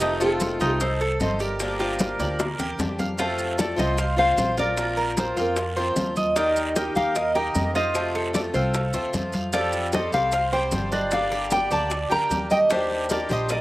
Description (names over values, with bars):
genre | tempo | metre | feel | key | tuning
latin, Cuban son and guajira | 151 BPM | 4/4 | straight | unclear | A4 = 441 Hz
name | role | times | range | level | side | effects
nylon-string guitar | melody | 0.0-13.6 s | G4 to Bb5 | -26 LUFS | left 1 dB | none
accordion | second line | 0.0-13.6 s | Eb4 to G5 | -32 LUFS | right 2 dB | light tremolo tuning
picked swing-style acoustic guitar | accompaniment | 0.0-13.5 s | C3 to G4 | -29 LUFS | left 2 dB | slapback echo
Cuban tres | arpeggios | 0.0-13.6 s | D4 to F5 | -27 LUFS | right 2 dB | slapback echo
upright bass | bass | 0.0-13.6 s | F1 to F2 | -30 LUFS | equal | none
bongos | percussion | 0.0-13.6 s | none | -32 LUFS | left 2 dB | none
congas | percussion | 0.0-13.6 s | none | -30 LUFS | left 1 dB | none
guiro | percussion | 0.0-13.6 s | none | -39 LUFS | right 2 dB | none
maracas | percussion | 0.0-13.6 s | none | -35 LUFS | right 2 dB | none
room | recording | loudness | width
little or no reverb | recorded outdoors, with no room sound | -21 LUFS | side -17 dB against mid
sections
0.0-3.2 A section; 3.2-13.6 B section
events
drum fill 2.2-3.2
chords
0.0 F7; 1.6 Gm7; 3.2 F; 4.8 Bbsus2; 6.4 Eb; 8.0 F; 9.5 Fadd9; 11.1 Gm; 12.7 Ebmaj7